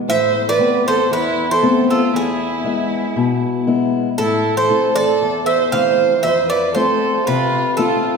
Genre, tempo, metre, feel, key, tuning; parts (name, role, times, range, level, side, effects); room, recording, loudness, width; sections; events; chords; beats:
greek folk, Greek bouzouki band; 117 BPM; 4/4; straight; A4 = 437 Hz
Greek bouzouki; melody; 0.1-8.1 s; G#4 to F5; -19 LUFS; equal
rich violin; second line; 0.1-8.1 s; E4 to C5; -19 LUFS; right 6 dB
fingerpicked steel-string acoustic guitar; accompaniment; 0.1-8.2 s; E2 to F4; -19 LUFS; left 4 dB
wet scoring stage reverb, RT60 2.0 s; recorded in a church or concert hall; -14 LUFS; side -5 dB against mid
0.1-8.2 A section
0.1 Amadd9; 2.1 E; 4.2 Am; 6.2 F
| 0.09 0.60 1.11 1.62 | 2.14 2.65 3.16 3.67 | 4.19 4.70 5.21 5.73 | 6.24 6.76 7.27 7.79